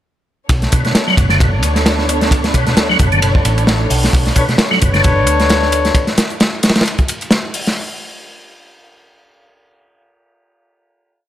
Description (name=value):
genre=breakbeat, breaks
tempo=132 BPM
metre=4/4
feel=swing 56% on 16ths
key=B minor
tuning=A4 = 442 Hz
part: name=dark symphonic string section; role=sustained chords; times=0.5-5.9 s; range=B3 to C#5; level=-21 LUFS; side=right 1 dB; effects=sidechain pumping
part: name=hollow-body short-scale picked electric bass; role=bass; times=0.5-5.9 s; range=F#1 to D2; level=-17 LUFS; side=equal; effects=none
part: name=crunchy breakbeat drum kit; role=drums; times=0.5-7.8 s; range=hi-hat, kick drum, ride cymbal, snare drum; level=-14 LUFS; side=equal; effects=none
part: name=electronic hi-hat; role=drums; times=0.5-7.7 s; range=none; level=-26 LUFS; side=left 2 dB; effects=none
part: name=tonewheel organ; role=riff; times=0.7-5.1 s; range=B2 to F#3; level=-16 LUFS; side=equal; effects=chorus vibrato, fast rotary speaker, tape echo
part: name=warm brass ensemble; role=stabs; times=4.4-6.2 s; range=D4 to C#5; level=-17 LUFS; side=left 3 dB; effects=tape echo
room=small room ambience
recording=none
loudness=-11 LUFS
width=side -12 dB against mid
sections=0.5-7.8 groove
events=none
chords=0.5 Bm9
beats=| 0.50 0.95 1.41 1.86 | 2.32 2.77 3.23 3.68 | 4.13 4.59 5.04 5.50 | 5.95 6.41 6.86 7.32